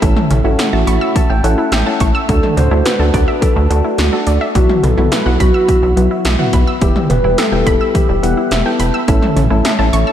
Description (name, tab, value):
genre	synth-pop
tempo	106 BPM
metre	4/4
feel	straight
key	E minor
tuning	A4 = 440 Hz
part	soft electric-piano-like synth keys	accompaniment	0.0-10.1 s	F#3 to B5	-18 LUFS	left 1 dB	chorus
part	wide unison pluck	arpeggios	0.0-10.1 s	E3 to E6	-21 LUFS	right 1 dB	ping-pong delay
part	rubbery square bass	bass	0.0-10.0 s	E1 to D2	-15 LUFS	equal	none
part	80s electronic pad drums	drums	0.0-10.1 s	hi-hat, kick drum, snare drum, toms	-16 LUFS	equal	gated reverb on snare and toms
part	soft octave-layered synth lead	melody	2.3-8.8 s	F#4 to C5	-18 LUFS	left 1 dB	chorus, phaser, ping-pong delay
room	moderate lush hall reverb, RT60 2.6 s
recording	dreamy mix soaked in reverb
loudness	-11 LUFS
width	side -10 dB against mid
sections	0.0-10.1 A section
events	synth keys fill 0.6-2.3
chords	0.0 A; 2.3 Dadd9; 4.6 Bsus4; 6.8 Em; 9.1 A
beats	| 0.02 0.59 1.16 1.72 | 2.29 2.85 3.42 3.99 | 4.55 5.12 5.68 6.25 | 6.82 7.38 7.95 8.52 | 9.08 9.65